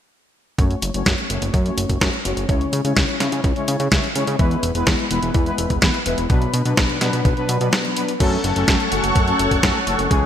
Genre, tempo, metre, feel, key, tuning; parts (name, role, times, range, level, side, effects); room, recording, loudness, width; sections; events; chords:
italo disco; 126 BPM; 4/4; straight; F# minor; A4 = 441 Hz
analog synth brass; stabs; 0.6-10.3 s; B2 to C#5; -22 LUFS; left 2 dB; chorus, digital delay
fat analog bass; bass; 0.6-10.3 s; E1 to C#3; -23 LUFS; equal; tube saturation
detuned 8-bit digital drum machine; drums; 0.6-10.2 s; crash cymbal, hi-hat, snare drum; -22 LUFS; equal; small room ambience
electronic kick drum; drums; 0.6-10.2 s; -20 LUFS; equal; small room ambience
phased string machine; sustained chords; 8.2-10.3 s; A4 to E6; -22 LUFS; right 2 dB; ensemble chorus, phaser
moderate lush hall reverb, RT60 1.9 s, digital ambience; bright 1980s-style digital production; -17 LUFS; side -10 dB against mid
0.6-8.2 A section; 8.2-10.3 B section
filter sweep on analog polysynth 0.6-8.2
0.6 F#m; 2.5 C#m; 4.4 E; 6.3 Bm; 8.2 F#m